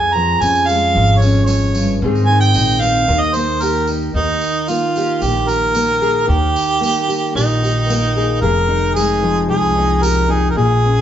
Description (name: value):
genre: acoustic folk duo or small band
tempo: 112 BPM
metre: 4/4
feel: straight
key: unclear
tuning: A4 = 438 Hz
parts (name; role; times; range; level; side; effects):
- clear harmonica; second line; 0.0-11.0 s; Eb4 to Bb5; -17 LUFS; right 2 dB; none
- fingerpicked steel-string acoustic guitar; accompaniment; 0.0-11.0 s; F2 to Ab4; -19 LUFS; left 2 dB; none
- upright bass; bass; 0.0-11.0 s; F1 to Ab2; -18 LUFS; equal; none
- tambourine; percussion; 0.4-10.2 s; none; -30 LUFS; right 3 dB; none
room: wet studio reverb, RT60 0.9 s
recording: band playing live in one room, nothing above 7.8 kHz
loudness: -13 LUFS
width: side -10 dB against mid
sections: 0.0-4.2 A section; 4.2-8.4 B section; 8.4-11.0 C section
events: harmonica solo 0.0-4.2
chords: 0.0 Db/F; 2.0 Ab; 3.1 Eb; 8.4 Fm7